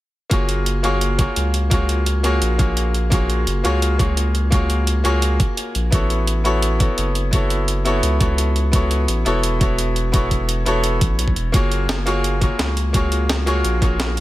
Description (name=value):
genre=liquid drum and bass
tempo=171 BPM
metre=4/4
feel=straight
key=F# major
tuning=A4 = 440 Hz
part: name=bright grand piano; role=accompaniment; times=0.3-14.2 s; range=A#3 to C#5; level=-21 LUFS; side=left 1 dB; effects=tape echo
part: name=saturated sub bass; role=bass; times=0.3-14.2 s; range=E1 to C#2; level=-20 LUFS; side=equal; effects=none
part: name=breakbeat sampler-style drum kit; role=drums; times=0.3-14.2 s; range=hi-hat, snare drum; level=-25 LUFS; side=right 2 dB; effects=none
part: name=electronic kick drum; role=drums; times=0.3-13.9 s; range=none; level=-19 LUFS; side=equal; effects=overdrive
room=light reverb, digital ambience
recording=none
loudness=-16 LUFS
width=side -16 dB against mid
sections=0.3-14.2 A section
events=none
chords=0.3 F#maj9; 5.9 A69; 11.5 F#maj9